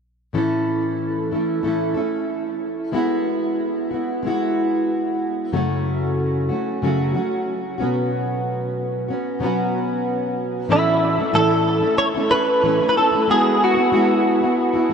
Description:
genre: acoustic pop.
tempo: 93 BPM.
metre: 4/4.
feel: straight.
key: A major.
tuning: A4 = 440 Hz.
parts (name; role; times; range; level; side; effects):
fingerpicked plugged-in steel-string acoustic guitar; accompaniment; 0.3-14.9 s; F#2 to A4; -20 LUFS; equal; double-tracked left and right.
direct-recorded clean electric guitar; melody; 10.7-14.5 s; E4 to C#5; -17 LUFS; equal; ensemble chorus, tape echo.
room: wet huge ambient reverb, RT60 9.1 s.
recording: dreamy mix soaked in reverb, faint mains hum.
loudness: -18 LUFS.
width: side -6 dB against mid.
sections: 0.3-10.7 A section; 10.7-14.9 B section.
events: none.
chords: 0.3 A; 2.9 Eadd9/G#; 5.5 F#m; 7.8 Bsus2; 10.7 A; 13.3 Eadd9/G#.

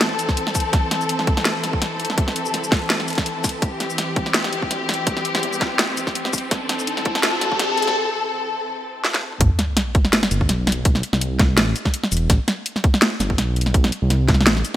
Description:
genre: half-time drum and bass.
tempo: 166 BPM.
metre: 4/4.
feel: swing 55% on 16ths, half-time.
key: A minor.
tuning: A4 = 439 Hz.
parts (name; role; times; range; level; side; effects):
rich studio string section; sustained chords; 0.0-9.4 s; E3 to A4; -24 LUFS; left 2 dB; sidechain pumping.
dark detuned saw bass; bass; 0.0-14.6 s; E1 to E2; -23 LUFS; equal; high-pass filter.
drum and bass drum kit; drums; 0.0-14.7 s; hi-hat, shaker, snare drum, toms; -21 LUFS; equal; overdrive, high-pass filter on hats, high-pass filter on snare, high-pass filter on perc, high-pass filter on toms.
electronic kick drum; drums; 0.3-14.4 s; none; -19 LUFS; equal; overdrive.
riser and sub drop; sound effects; 5.5-10.9 s; none; -27 LUFS; equal; none.
room: moderate plate reverb, RT60 2.3 s.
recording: bright 1980s-style digital production, high-pass filter.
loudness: -18 LUFS.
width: side -12 dB against mid.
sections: 0.0-9.4 A section; 9.4-14.8 B section.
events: build-up 0.0-9.4; riser 5.5-8.0; break 8.0-9.4; drum fill 9.0-9.4; drop 9.4-14.8; impact 9.4-10.9.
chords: 0.0 Am; 3.6 C; 9.4 Am.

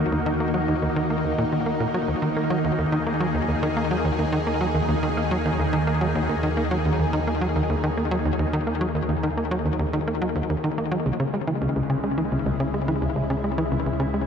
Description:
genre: ambient, sequencer-driven space music.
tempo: 107 BPM.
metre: 4/4.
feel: straight.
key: unclear.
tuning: A4 = 440 Hz.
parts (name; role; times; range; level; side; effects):
lush unison pad; sustained chords; 0.0-14.3 s; C#3 to G#4; -26 LUFS; equal; chorus, phaser.
tight sequencer bass; riff; 0.0-14.2 s; C#2 to A#3; -24 LUFS; equal; ping-pong delay.
warm sub bass; bass; 0.0-14.3 s; C#2 to D#2; -32 LUFS; equal; none.
room: wet huge ambient reverb, RT60 8.1 s.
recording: in a vast, echoing space.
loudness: -21 LUFS.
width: side -7 dB against mid.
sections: 0.0-14.3 A section.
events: none.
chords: 0.0 D#m; 11.1 C#m.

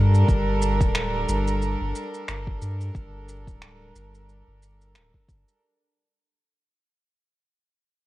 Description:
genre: organic downtempo.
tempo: 90 BPM.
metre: 4/4.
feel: swing 57% on 16ths.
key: G minor.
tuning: A4 = 440 Hz.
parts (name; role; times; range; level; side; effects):
rich chamber string section; sustained chords; 0.0-5.6 s; G3 to Bb4; -27 LUFS; right 1 dB; sidechain pumping.
warm sub bass; bass; 0.0-5.4 s; D1 to G2; -23 LUFS; equal; none.
electronic shaker and finger snaps; drums; 0.1-5.6 s; none; -34 LUFS; equal; overdrive.
electronic kick drum; drums; 0.3-5.4 s; none; -24 LUFS; equal; none.
room: light reverb, digital ambience.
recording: worn, warbling old tape, cassette tape, warbly pitch drift.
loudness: -22 LUFS.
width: side -16 dB against mid.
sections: 0.0-5.6 A section.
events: fade-out 0.0-5.6.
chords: 0.0 Gm.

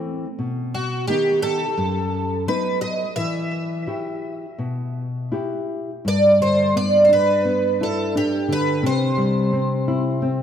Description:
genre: fado-style ballad.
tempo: 86 BPM.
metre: 4/4.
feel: rubato.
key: E harmonic minor, G major from 6.0 s.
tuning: A4 = 444 Hz.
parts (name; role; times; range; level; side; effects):
nylon-string guitar; accompaniment; 0.0-10.4 s; F#2 to G4; -23 LUFS; left 2 dB; none.
picked twelve-string acoustic guitar; melody; 0.7-9.8 s; F#4 to E5; -20 LUFS; right 1 dB; analog chorus, tape echo.
room: wet plate reverb, RT60 2.8 s.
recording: dreamy mix soaked in reverb.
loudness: -18 LUFS.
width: side -9 dB against mid.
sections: 0.0-6.0 A section; 6.0-10.4 B section.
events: none.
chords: 0.4 B; 3.2 Emadd9; 6.0 G6; 8.8 C.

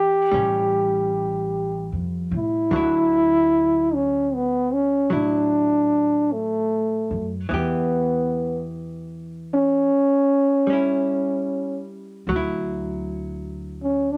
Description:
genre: jazz ballad.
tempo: 50 BPM.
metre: 4/4.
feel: swing 67% on 8ths.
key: D major.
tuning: A4 = 441 Hz.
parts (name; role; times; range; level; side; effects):
breathy trombone; melody; 0.0-14.2 s; A3 to G4; -22 LUFS; equal; none.
archtop guitar, miked and amplified; accompaniment; 0.0-14.2 s; D3 to G4; -32 LUFS; equal; none.
upright bass; bass; 0.0-14.2 s; A1 to A2; -33 LUFS; equal; none.
room: moderate club reverb, RT60 0.6 s.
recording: none.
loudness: -22 LUFS.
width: mono.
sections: 0.0-12.3 A section; 12.3-14.2 B section.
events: trombone solo 12.3-14.2.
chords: 0.3 Aaug7; 2.7 Dadd9; 7.5 Em; 9.9 C#dim; 12.3 Dadd9.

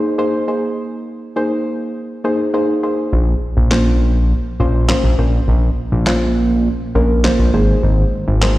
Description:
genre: dance-pop.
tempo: 102 BPM.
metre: 4/4.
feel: straight.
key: Bb minor.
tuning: A4 = 441 Hz.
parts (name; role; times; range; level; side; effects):
soft round pluck; accompaniment; 0.0-8.6 s; Bb3 to C5; -18 LUFS; equal; chorus.
fat analog bass; bass; 3.1-8.6 s; Ab1 to Bb1; -14 LUFS; equal; none.
electronic snare drum and handclaps; drums; 3.7-8.6 s; none; -23 LUFS; equal; slapback echo.
room: light reverb, digital ambience.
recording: live gig heard through the venue's PA, recital hall reverb.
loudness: -14 LUFS.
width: side -17 dB against mid.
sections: 0.0-8.6 A section.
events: none.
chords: 0.0 Abadd9; 3.1 Bbmadd9; 7.5 Abadd9.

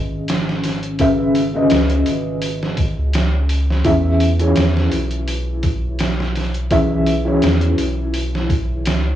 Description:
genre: trip hop.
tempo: 84 BPM.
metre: 4/4.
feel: swing 54% on 16ths.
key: unclear.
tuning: A4 = 440 Hz.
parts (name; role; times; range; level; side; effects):
felt-muted upright piano; accompaniment; 0.0-9.2 s; C#3 to E5; -19 LUFS; left 1 dB; tremolo, vintage 12-bit sampler grit, tape echo.
warm sub bass; bass; 0.0-9.2 s; G#1 to E2; -20 LUFS; equal; none.
trip hop sampler-style drum kit; drums; 0.3-9.0 s; hi-hat, kick drum, snare drum; -21 LUFS; right 1 dB; none.
room: moderate spring reverb, RT60 1.9 s, digital ambience.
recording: home recording on cassette.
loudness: -15 LUFS.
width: side -11 dB against mid.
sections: 0.0-9.2 A section.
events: none.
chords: 0.0 C#m7; 3.9 E6.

